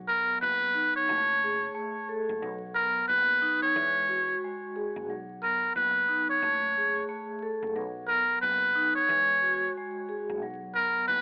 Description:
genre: hip hop, boom-bap hip-hop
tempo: 90 BPM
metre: 4/4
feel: swing 61% on 16ths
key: B major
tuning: A4 = 439 Hz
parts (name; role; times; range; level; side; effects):
- vibraphone with medium mallets; accompaniment; 0.0-11.2 s; F#3 to A4; -35 LUFS; equal; none
- woody fretless electric bass; bass; 0.0-11.2 s; F#1 to E2; -43 LUFS; equal; none
- trumpet with metal mute; melody; 0.1-11.2 s; A#4 to C#5; -24 LUFS; equal; cassette tape, analog delay
room: light reverb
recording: home recording on cassette, vinyl crackle, telephone sound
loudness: -25 LUFS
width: side -39 dB against mid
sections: 0.0-11.2 A section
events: none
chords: 0.0 B; 1.1 F#madd9; 2.4 B; 3.8 E69; 5.1 B; 6.4 F#madd9; 7.8 B; 9.1 E69; 10.4 B5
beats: 0.42 1.09 1.76 | 2.42 3.09 3.76 4.42 | 5.09 5.76 6.42 7.09 | 7.76 8.42 9.09 9.76 | 10.42 11.09

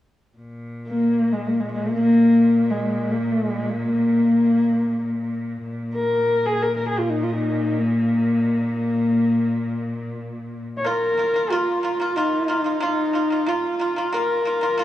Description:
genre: mongolian traditional, Mongolian folk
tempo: free time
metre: none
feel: none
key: unclear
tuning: A4 = 440 Hz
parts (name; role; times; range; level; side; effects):
- rich cello; drone; 0.4-10.9 s; Bb2; -27 LUFS; left 1 dB; none
- dark horsehead fiddle; melody; 0.9-14.8 s; Ab3 to Db5; -20 LUFS; left 1 dB; none
- pipa; arpeggios; 10.8-14.8 s; Bb3 to F4; -24 LUFS; equal; none
room: moderate huge ambient reverb, RT60 6.4 s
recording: worn, warbling old tape, cassette tape, warbly pitch drift, small room ambience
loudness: -19 LUFS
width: side -13 dB against mid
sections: 0.4-10.8 A section; 10.8-14.8 B section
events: none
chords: 0.4 N.C.; 10.8 Bb5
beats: free time

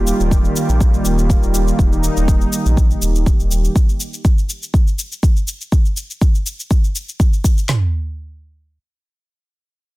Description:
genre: afro house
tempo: 122 BPM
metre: 4/4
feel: swing 53% on 16ths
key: unclear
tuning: A4 = 440 Hz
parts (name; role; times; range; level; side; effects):
- warm analog pad; sustained chords; 0.0-3.7 s; Eb3 to G4; -20 LUFS; right 2 dB; chorus, sidechain pumping
- warm sub bass; bass; 0.0-3.7 s; Eb1 to Bb1; -17 LUFS; equal; sidechain pumping
- shaker; drums; 0.1-7.7 s; none; -27 LUFS; left 1 dB; studio ambience, soft clipping on snare
- deep house drum kit; drums; 0.3-7.8 s; handclaps, kick drum, snare drum, toms; -14 LUFS; equal; studio ambience
room: little or no reverb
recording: dense, heavily limited modern master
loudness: -14 LUFS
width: side -19 dB against mid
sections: 0.0-7.7 A section; 7.7-10.0 B section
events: filter sweep on sub bass 0.0-3.8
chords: 0.0 Ebadd9; 7.7 N.C.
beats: 0.31 0.80 1.30 | 1.79 2.28 2.77 3.26 | 3.75 4.25 4.74 5.23 | 5.72 6.21 6.71 7.20 | 7.69

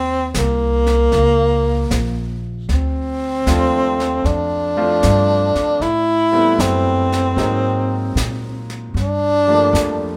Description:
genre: jazz ballad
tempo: 77 BPM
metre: 4/4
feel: swing 67% on 8ths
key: unclear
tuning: A4 = 441 Hz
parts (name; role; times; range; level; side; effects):
- breathy tenor saxophone; melody; 0.0-10.2 s; Bb3 to E4; -19 LUFS; equal; none
- upright bass; bass; 0.0-10.2 s; Bb1 to Bb2; -23 LUFS; equal; none
- jazz brush drum kit; drums; 0.3-10.2 s; brushed snare drum, hi-hat, snare drum; -30 LUFS; equal; none
- clear concert grand piano; accompaniment; 3.5-10.2 s; F3 to F4; -25 LUFS; equal; none
room: light reverb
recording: none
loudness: -17 LUFS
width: mono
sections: 0.0-10.2 A section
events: none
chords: 0.0 Eb5; 2.7 Dm7; 5.8 Am9; 7.4 Ab9; 9.0 Gm9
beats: 0.35 1.13 1.91 | 2.69 3.47 4.25 5.03 | 5.81 6.59 7.38 8.16 | 8.95 9.74

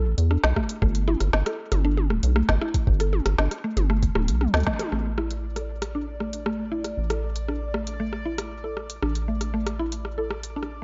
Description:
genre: IDM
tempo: 117 BPM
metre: 4/4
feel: straight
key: unclear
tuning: A4 = 440 Hz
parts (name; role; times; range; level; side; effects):
- deep acid bass; bass; 0.0-10.8 s; D1 to E2; -28 LUFS; equal; none
- organic electronic drum kit; drums; 0.2-10.7 s; hi-hat, rim click, snare drum, toms; -31 LUFS; equal; overdrive
- mallet-like synth pluck; arpeggios; 0.3-10.7 s; A3 to A4; -32 LUFS; equal; subtle chorus, tape echo
- electronic kick drum; drums; 0.6-4.8 s; none; -27 LUFS; equal; overdrive
- bubbling stepped-filter texture; texture; 4.9-10.8 s; D5; -42 LUFS; equal; chorus, built-in reverb
room: light reverb, digital ambience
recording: dark, warm production, nothing above 7.6 kHz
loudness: -25 LUFS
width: mono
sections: 0.0-4.9 A section; 4.9-10.8 B section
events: drum fill 4.2-4.9; band accent 4.7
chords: 0.0 Bm7; 0.8 Gsus2; 4.9 A5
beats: 0.31 | 0.82 1.33 1.84 2.36 | 2.87 3.38 3.90 4.41 | 4.92 5.43 5.95 6.46 | 6.97 7.49 8.00 8.51 | 9.03 9.54 10.05 10.56

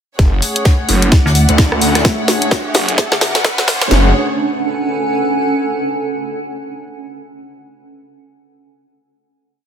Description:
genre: bass house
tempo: 129 BPM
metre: 4/4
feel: swing 59% on 16ths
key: F# minor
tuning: A4 = 440 Hz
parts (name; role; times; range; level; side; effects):
- dark studio string section; sustained chords; 0.2-4.1 s; A3 to F#5; -22 LUFS; left 2 dB; sidechain pumping
- phased detuned saw bass; bass; 0.2-4.1 s; F#1 to D2; -14 LUFS; equal; phaser, overdrive, sidechain pumping
- garage drum kit; drums; 0.2-4.0 s; kick drum, snare drum; -12 LUFS; equal; small room reverb
- garage drum kit; drums; 0.2-3.9 s; hi-hat, rim click, snare drum; -17 LUFS; equal; small room reverb
- jazz brush drum kit; drums; 0.2-3.9 s; hi-hat, snare drum; -26 LUFS; left 3 dB; sidechain pumping on hats, high-pass filter on hats, small room reverb, soft clipping on snare, high-pass filter on snare, high-pass filter on room
- riser; sound effects; 2.2-3.9 s; none; -26 LUFS; right 2 dB; none
- granular cloud pad; texture; 0.6-5.7 s; A3 to G#5; -19 LUFS; right 1 dB; built-in reverb, sidechain pumping
- metallic FM bass; bass; 1.3-3.6 s; D2; -13 LUFS; equal; sidechain pumping
room: light reverb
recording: dense, heavily limited modern master, high-pass filter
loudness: -12 LUFS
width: side -8 dB against mid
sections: 0.2-3.9 build; 3.9-5.8 final chord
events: build-up 0.2-3.9; drum fill 0.2-3.9; filter sweep 0.2-3.9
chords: 0.2 F#madd9; 1.1 Dadd9; 2.0 F#madd9; 3.0 Bm; 3.9 F#madd9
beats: | 0.19 0.65 1.12 1.58 | 2.05 2.52 2.98 3.44 | 3.91 4.38 4.84 5.31

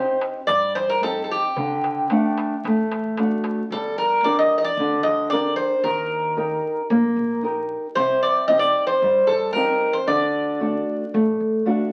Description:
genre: greek folk, Greek bouzouki band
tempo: 113 BPM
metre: 4/4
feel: straight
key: G harmonic minor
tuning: A4 = 441 Hz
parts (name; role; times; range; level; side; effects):
- Greek bouzouki; melody; 0.0-11.6 s; G4 to Eb5; -22 LUFS; equal; none
- nylon-string guitar; accompaniment; 0.0-11.9 s; C3 to F#5; -25 LUFS; equal; none
- darbuka; percussion; 0.1-3.6 s; none; -38 LUFS; equal; none
- upright bass; bass; 0.5-11.9 s; G1 to G2; -43 LUFS; equal; none
room: wet studio reverb, RT60 0.8 s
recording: very old 78 rpm record, vinyl crackle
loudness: -21 LUFS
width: mono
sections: 0.0-3.7 A section; 3.7-11.9 B section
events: none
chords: 0.0 Cm; 1.6 D; 3.7 Gm; 5.8 Eb; 8.0 Cm; 10.1 D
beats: 0.49 1.03 | 1.57 2.10 2.64 3.18 | 3.71 4.25 4.78 5.31 | 5.84 6.38 6.91 7.44 | 7.97 8.49 9.02 9.55 | 10.08 10.61 11.13 11.66

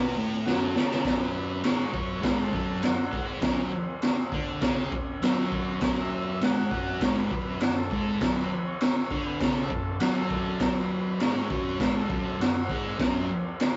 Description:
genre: garage rock duo or trio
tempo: 100 BPM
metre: 4/4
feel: straight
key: F# minor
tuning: A4 = 440 Hz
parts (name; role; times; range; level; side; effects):
- thick fuzz guitar; riff; 0.0-13.3 s; F#2 to D4; -32 LUFS; equal; distortion
- overdriven combo organ; melody; 0.5-12.8 s; F#4 to F#5; -40 LUFS; equal; none
- raw garage drum kit; drums; 0.5-13.7 s; crash cymbal, kick drum, snare drum; -29 LUFS; equal; none
room: light reverb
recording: rough rehearsal-room recording, nothing above 7.7 kHz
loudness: -27 LUFS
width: mono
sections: 0.0-1.0 A section; 1.0-13.8 B section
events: drum fill 0.4-1.0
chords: 0.0 F#m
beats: 0.45 | 1.04 1.64 2.23 2.83 | 3.42 4.02 4.62 5.21 | 5.81 6.41 7.00 7.60 | 8.20 8.80 9.40 9.99 | 10.59 11.19 11.79 12.39 | 12.98 13.58

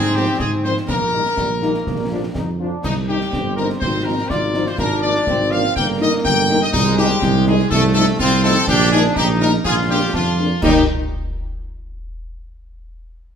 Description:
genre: military-style march for wind band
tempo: 123 BPM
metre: 2/4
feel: straight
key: Eb major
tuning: A4 = 440 Hz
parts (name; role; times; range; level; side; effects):
- bright trumpet section; melody; 0.0-10.8 s; Eb4 to G5; -20 LUFS; left 2 dB; none
- bright trombone section; sustained chords; 0.0-10.8 s; Eb3 to F4; -23 LUFS; right 1 dB; none
- dark tuba; bass; 0.0-10.8 s; G1 to Ab2; -20 LUFS; right 2 dB; none
- mellow French horn section; accompaniment; 0.2-10.8 s; D3 to F4; -24 LUFS; left 4 dB; none
- concert snare drum, concert bass drum and clash cymbals; drums; 0.4-10.9 s; none; -25 LUFS; left 1 dB; none
room: wet large studio reverb, RT60 1.3 s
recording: minimal, uncompressed stereo recording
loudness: -15 LUFS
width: side -7 dB against mid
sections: 0.0-10.6 A section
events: none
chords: 0.0 Fm7/Ab; 0.9 Eb/Bb; 1.9 Bb; 2.8 Cm; 3.8 Fm7/Ab; 4.8 Bb7/Ab; 5.8 Eb/G; 6.7 Ab/C; 7.7 F7/C; 8.7 Eb/Bb; 9.7 Bb7; 10.6 Eb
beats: 0.41 | 0.90 1.38 | 1.87 2.35 | 2.84 3.33 | 3.81 4.30 | 4.79 5.27 | 5.76 6.25 | 6.73 7.22 | 7.71 8.19 | 8.68 9.17 | 9.65 10.14 | 10.63

